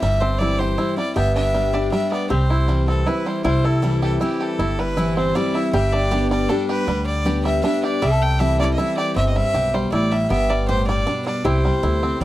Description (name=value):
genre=bluegrass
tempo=158 BPM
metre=3/4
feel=straight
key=C major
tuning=A4 = 439 Hz
part: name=clear fiddle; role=melody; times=0.0-12.2 s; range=G4 to G5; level=-24 LUFS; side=equal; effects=none
part: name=lap resonator guitar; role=second line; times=0.0-12.2 s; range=E4 to A4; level=-28 LUFS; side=left 2 dB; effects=tape echo
part: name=picked steel-string acoustic guitar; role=accompaniment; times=0.0-12.2 s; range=G2 to G4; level=-24 LUFS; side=left 1 dB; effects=none
part: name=bluegrass banjo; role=arpeggios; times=0.0-12.2 s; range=G3 to G4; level=-26 LUFS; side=right 2 dB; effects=none
part: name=upright bass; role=bass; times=0.0-12.2 s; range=G1 to E2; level=-22 LUFS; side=equal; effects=none
room=light reverb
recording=dry, close 1970s-style studio recording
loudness=-17 LUFS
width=side -15 dB against mid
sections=0.0-3.4 A section; 3.4-12.2 A section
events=none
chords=0.0 C; 1.2 G; 2.3 C; 5.7 G; 8.0 C; 10.3 G; 11.4 C